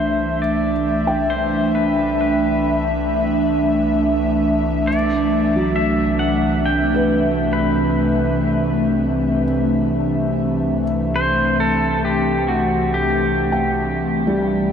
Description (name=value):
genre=ambient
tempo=67 BPM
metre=3/4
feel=straight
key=unclear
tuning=A4 = 440 Hz
part: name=pedal steel guitar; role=melody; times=0.0-14.7 s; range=F#4 to G5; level=-24 LUFS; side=equal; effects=diffuse ambient delay
part: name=airy breathy pad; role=sustained chords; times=0.0-14.7 s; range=C2 to E5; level=-18 LUFS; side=equal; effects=chorus
part: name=felt-muted upright piano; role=arpeggios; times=0.0-14.7 s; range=F#3 to B5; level=-27 LUFS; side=equal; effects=diffuse ambient delay
part: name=analog drone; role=drone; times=6.8-14.7 s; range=C3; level=-25 LUFS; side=equal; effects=chorus
room=wet huge ambient reverb, RT60 8.2 s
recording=none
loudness=-16 LUFS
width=side -7 dB against mid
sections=0.0-14.7 A section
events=fade-in on pedal steel guitar 0.0-14.7; filter sweep on analog synth pad 0.0-14.7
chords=0.0 Cmaj7; 4.9 Emadd9/C